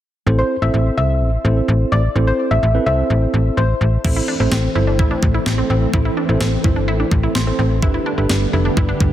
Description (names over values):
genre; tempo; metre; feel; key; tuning
synth-pop; 127 BPM; 4/4; straight; A minor; A4 = 440 Hz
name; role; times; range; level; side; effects
mellow tine electric piano; accompaniment; 0.3-9.1 s; C4 to C6; -22 LUFS; right 2 dB; medium stereo tremolo, shimmer reverb
slap-like FM bass; bass; 0.3-9.1 s; F1 to C2; -17 LUFS; equal; none
soft round pluck; second line; 0.4-3.9 s; C5 to E5; -22 LUFS; left 3 dB; chorus, tape echo, shimmer reverb
soft string machine; sustained chords; 4.0-9.1 s; D3 to G4; -24 LUFS; left 1 dB; ensemble chorus, shimmer reverb
wide unison pluck; arpeggios; 4.0-9.1 s; C4 to E4; -26 LUFS; equal; tape echo, shimmer reverb
clean 12-bit digital drum machine; drums; 4.0-9.1 s; crash cymbal, kick drum, snare drum; -20 LUFS; equal; overdrive
room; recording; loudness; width
light reverb, digital ambience; dense, heavily limited modern master; -14 LUFS; side -12 dB against mid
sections
0.3-4.0 A section; 4.0-9.1 B section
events
tine electric piano fill 7.1-7.8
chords
0.3 Am; 7.8 Gadd9